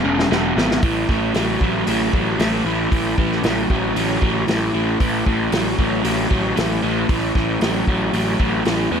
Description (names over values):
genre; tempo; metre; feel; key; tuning
blues rock power trio and southern rock; 115 BPM; 4/4; straight; unclear; A4 = 444 Hz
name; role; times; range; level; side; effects
overdriven electric guitar; riff; 0.0-9.0 s; E2 to F#3; -20 LUFS; equal; none
fuzz picked electric bass; bass; 0.0-9.0 s; E1 to E2; -22 LUFS; equal; overdrive
vintage drum kit; drums; 0.2-8.8 s; hi-hat, kick drum, snare drum; -22 LUFS; equal; none
room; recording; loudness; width
light reverb, small room reverb; none; -17 LUFS; side -7 dB against mid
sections
0.8-9.0 A section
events
drum fill 0.0-0.8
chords
0.0 E; 0.8 A5